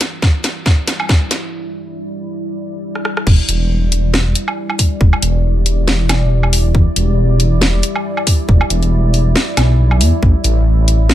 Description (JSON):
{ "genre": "deep dubstep", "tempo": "138 BPM", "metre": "4/4", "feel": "swing 56% on 16ths, half-time", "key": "E dorian", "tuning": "A4 = 440 Hz", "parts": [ { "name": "deep dark ambient pad", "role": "sustained chords", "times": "0.0-11.1 s", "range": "G3 to D5", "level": "-22 LUFS", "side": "equal", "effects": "chorus, built-in reverb" }, { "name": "garage drum kit", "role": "drums", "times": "0.0-11.1 s", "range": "crash cymbal, hi-hat, rim click, snare drum, woodblock", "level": "-17 LUFS", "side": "equal", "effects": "high-pass filter on snare, high-pass filter on hats, high-pass filter on perc, high-pass filter on cymbals" }, { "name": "electronic kick drum", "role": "drums", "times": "0.2-10.3 s", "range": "none", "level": "-11 LUFS", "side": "equal", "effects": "none" }, { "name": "dark detuned saw bass", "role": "bass", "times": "3.3-11.1 s", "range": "E1 to E2", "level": "-13 LUFS", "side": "equal", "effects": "none" } ], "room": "digital ambience", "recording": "none", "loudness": "-12 LUFS", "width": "side -13 dB against mid", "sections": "0.0-3.3 A section; 3.3-11.1 B section", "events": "build-up 0.0-3.3; drum fill 0.0-1.5, 2.9-3.3; filter sweep on ambient pad 0.0-3.3; break 1.5-3.3; drop 3.3-11.1", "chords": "0.0 Em7; 10.2 A" }